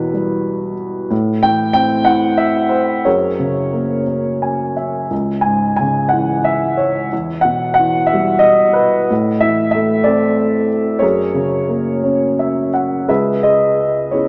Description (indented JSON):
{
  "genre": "classical, lyrical solo piano",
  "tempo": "57-63 BPM (dotted quarters)",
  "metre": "6/8",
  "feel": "rubato",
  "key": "unclear",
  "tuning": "A4 = 439 Hz",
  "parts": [
    { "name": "dark grand piano", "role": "solo", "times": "0.0-14.3 s", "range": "C#2 to G#5", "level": "-16 LUFS", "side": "equal", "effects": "none" }
  ],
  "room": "wet plate reverb, RT60 3.5 s",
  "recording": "none",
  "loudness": "-16 LUFS",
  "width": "mono",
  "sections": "0.0-13.1 A section; 13.1-14.3 B section",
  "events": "grand piano fill 4.1-5.1, 12.0-13.1",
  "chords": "0.0 Emadd9; 1.1 Am; 3.1 F#add9; 5.1 C#m; 7.1 Em; 9.1 Am; 11.0 F#add9; 13.1 C#m7"
}